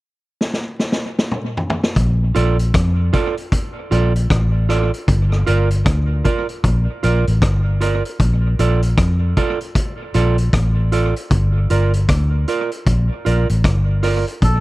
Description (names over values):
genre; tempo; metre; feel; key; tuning
roots reggae; 77 BPM; 4/4; swing 62% on 16ths; Bb major; A4 = 440 Hz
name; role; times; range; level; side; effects
vintage drum kit; drums; 0.4-14.6 s; hi-hat, kick drum, rim click, snare drum, toms; -20 LUFS; equal; analog delay
vintage muted fingered electric bass; bass; 2.0-14.6 s; G1 to F2; -16 LUFS; equal; none
clean electric guitar; accompaniment; 2.3-14.2 s; F4 to D5; -23 LUFS; right 5 dB; dub echo
melodica; melody; 14.4-14.6 s; A4; -20 LUFS; equal; tube saturation
room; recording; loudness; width
studio reverb; echo-heavy mix; -15 LUFS; side -18 dB against mid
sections
0.0-2.0 A section; 2.0-14.4 B section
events
drum fill 0.4-2.0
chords
0.0 N.C.; 2.0 Bbmaj7; 5.1 Gm7; 8.2 Bbmaj7; 11.3 Gm7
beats
0.40 1.18 | 1.96 2.74 3.52 4.30 | 5.08 5.86 6.64 7.42 | 8.20 8.97 9.75 10.53 | 11.31 12.09 12.87 13.64 | 14.42